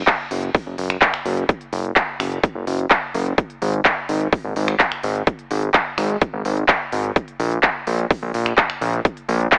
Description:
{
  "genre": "EDM, festival progressive house",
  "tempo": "127 BPM",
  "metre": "4/4",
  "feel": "straight",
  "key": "F# major",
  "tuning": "A4 = 440 Hz",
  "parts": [
    { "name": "fat analog bass", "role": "bass", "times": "0.0-9.5 s", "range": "F#1 to A#1", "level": "-24 LUFS", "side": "equal", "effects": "sidechain pumping" },
    { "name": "big-room dance drum kit", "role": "drums", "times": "0.1-9.6 s", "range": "finger snaps, handclaps, hi-hat", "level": "-22 LUFS", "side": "equal", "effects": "overdrive" },
    { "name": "electronic kick drum", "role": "drums", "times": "0.1-9.6 s", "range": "none", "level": "-21 LUFS", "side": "equal", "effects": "overdrive" }
  ],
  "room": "light reverb",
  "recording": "AM radio sound",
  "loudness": "-20 LUFS",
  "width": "mono",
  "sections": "0.0-9.6 A section",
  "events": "none",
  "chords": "none",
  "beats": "0.07 0.55 1.02 | 1.49 1.96 2.44 2.91 | 3.38 3.85 4.33 4.80 | 5.27 5.74 6.22 6.69 | 7.16 7.63 8.11 8.58 | 9.05 9.52"
}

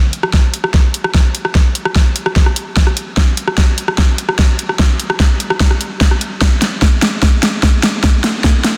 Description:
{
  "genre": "heavy wobble dubstep",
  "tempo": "148 BPM",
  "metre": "4/4",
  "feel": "half-time",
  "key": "none",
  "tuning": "none",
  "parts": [
    { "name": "dubstep drum kit", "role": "drums", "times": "0.1-8.7 s", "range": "hi-hat, rim click, snare drum", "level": "-18 LUFS", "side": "equal", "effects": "overdrive" },
    { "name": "electronic kick drum", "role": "drums", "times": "0.3-8.5 s", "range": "none", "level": "-14 LUFS", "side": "equal", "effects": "overdrive" }
  ],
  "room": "moderate lush hall reverb, RT60 1.9 s, digital ambience",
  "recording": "dense, heavily limited modern master",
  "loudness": "-14 LUFS",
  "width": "mono",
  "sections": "0.0-8.8 A section",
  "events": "build-up 0.0-8.8; drum fill 0.0-8.8",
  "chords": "none",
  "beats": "0.33 0.74 1.14 | 1.55 1.96 2.36 2.77 | 3.17 3.58 3.98 4.39 | 4.79 5.20 5.60 6.01 | 6.41 6.82 7.22 7.63 | 8.04 8.44"
}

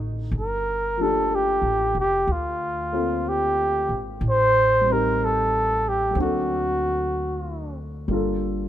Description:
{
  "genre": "jazz ballad",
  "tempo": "62 BPM",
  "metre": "4/4",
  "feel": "swing 67% on 8ths",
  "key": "G minor",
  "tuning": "A4 = 441 Hz",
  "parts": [
    { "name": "breathy flugelhorn", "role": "melody", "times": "0.0-7.8 s", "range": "F4 to C5", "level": "-22 LUFS", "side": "right 1 dB", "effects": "none" },
    { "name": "dark baby grand piano", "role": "accompaniment", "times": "0.0-8.7 s", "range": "D3 to A4", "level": "-28 LUFS", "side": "left 2 dB", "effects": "none" },
    { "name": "upright bass", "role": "bass", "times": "0.0-8.7 s", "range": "F1 to D2", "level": "-29 LUFS", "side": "equal", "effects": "none" }
  ],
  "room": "light reverb",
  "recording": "minimal, uncompressed stereo recording",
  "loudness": "-20 LUFS",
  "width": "side -11 dB against mid",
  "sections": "0.0-8.1 A section",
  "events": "none",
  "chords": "0.3 Gm9; 4.2 Am7b5; 6.2 D7b13; 8.1 Gm9",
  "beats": "| 0.33 1.30 2.27 3.24 | 4.21 5.18 6.15 7.12 | 8.10"
}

